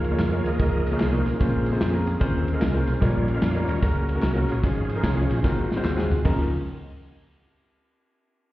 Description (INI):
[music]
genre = uptempo gospel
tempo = 149 BPM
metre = 4/4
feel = swing 64% on 8ths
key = Db major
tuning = A4 = 440 Hz
[part]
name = bright grand piano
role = accompaniment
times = 0.0-6.5 s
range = Db2 to Eb5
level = -27 LUFS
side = left 2 dB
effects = none
[part]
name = bright tonewheel organ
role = sustained chords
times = 0.0-6.5 s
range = Db3 to F5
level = -29 LUFS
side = right 3 dB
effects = fast rotary speaker, chorus vibrato
[part]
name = fingered electric bass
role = bass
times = 0.0-6.5 s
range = Ab1 to F2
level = -25 LUFS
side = equal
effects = none
[part]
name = natural country drum kit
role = drums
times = 0.0-6.4 s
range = hi-hat, kick drum, ride cymbal, snare drum, toms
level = -26 LUFS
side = equal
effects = none
[part]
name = tambourine and handclaps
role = percussion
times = 0.0-6.5 s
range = none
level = -44 LUFS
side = left 1 dB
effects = none
[sound]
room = light reverb, small room ambience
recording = heard muffled through a wall, stone room reverb, EQ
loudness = -21 LUFS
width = side -16 dB against mid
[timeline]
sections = 0.0-6.2 A section; 6.2-7.9 B section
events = tonewheel organ solo 0.0-6.2; drum fill 5.4-6.2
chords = 0.0 Db69; 1.4 Bbm9; 3.0 Eb9/Bb; 3.8 Gb/Db; 4.6 Db/Ab; 5.4 Ab13; 6.2 Db69